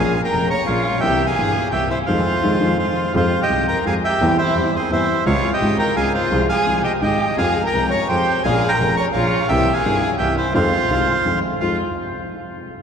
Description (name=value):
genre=tango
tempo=171 BPM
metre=3/4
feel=rubato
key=F minor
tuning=A4 = 440 Hz
part: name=bandoneon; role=melody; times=0.0-11.8 s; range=Ab4 to Db6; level=-20 LUFS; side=right 2 dB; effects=none
part: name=warm violin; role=second line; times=0.0-11.8 s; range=C4 to Db5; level=-23 LUFS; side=left 1 dB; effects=none
part: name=warm concert grand piano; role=accompaniment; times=0.0-11.8 s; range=F1 to Ab4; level=-21 LUFS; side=left 1 dB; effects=none
part: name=clear double bass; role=bass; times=0.0-11.8 s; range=F1 to F2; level=-25 LUFS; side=right 1 dB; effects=none
room=wet cathedral reverb, RT60 5.3 s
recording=recorded in a church or concert hall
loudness=-16 LUFS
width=side -7 dB against mid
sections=0.0-3.1 A section; 3.1-11.6 A section; 11.6-12.7 B section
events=band accent 2.1-3.1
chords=0.0 Bbm7; 1.0 C7; 2.1 Fm7; 3.1 Fmadd9; 4.2 C/E; 5.3 Dbmaj7; 6.3 Fm/C; 7.0 Ab; 7.4 Fmadd9; 8.5 Bbm7; 9.5 C7; 10.5 Fm7